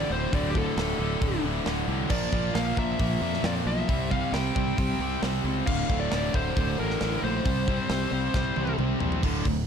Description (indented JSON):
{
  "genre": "heavy metal",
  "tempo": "134 BPM",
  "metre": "4/4",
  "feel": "straight",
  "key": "unclear",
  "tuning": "A4 = 440 Hz",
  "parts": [
    { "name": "high-gain lead guitar", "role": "melody", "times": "0.0-8.8 s", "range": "G4 to G5", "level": "-32 LUFS", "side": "left 3 dB", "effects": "distortion, tape echo" },
    { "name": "fuzz guitar", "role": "riff", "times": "0.0-9.6 s", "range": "D2 to C4", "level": "-34 LUFS", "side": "equal", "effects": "distortion" },
    { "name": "tight distorted guitar", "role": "riff", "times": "0.0-9.6 s", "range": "D2 to C4", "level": "-32 LUFS", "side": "left 14 dB", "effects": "distortion" },
    { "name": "tight distorted guitar", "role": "riff", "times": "0.0-9.6 s", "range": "D2 to C4", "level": "-32 LUFS", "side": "right 12 dB", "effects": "distortion" },
    { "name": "fuzz fingered electric bass", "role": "bass", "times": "0.0-9.7 s", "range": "D1 to F2", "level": "-31 LUFS", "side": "equal", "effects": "overdrive" },
    { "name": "tight metal drum kit", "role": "drums", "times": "0.3-9.6 s", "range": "crash cymbal, hi-hat, kick drum, snare drum, toms", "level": "-30 LUFS", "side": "equal", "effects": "none" }
  ],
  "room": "light reverb",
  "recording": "dark, warm production",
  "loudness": "-24 LUFS",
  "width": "side -7 dB against mid",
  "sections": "0.0-9.2 A section",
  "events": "drum fill 8.3-9.2",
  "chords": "0.0 D5; 2.1 Bb; 3.9 C5; 5.7 D5; 7.5 C5",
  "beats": "| 0.32 0.76 1.21 1.66 | 2.10 2.55 3.00 3.44 | 3.89 4.33 4.78 5.23 | 5.67 6.12 6.56 7.01 | 7.45 7.90 8.34 8.79 | 9.23"
}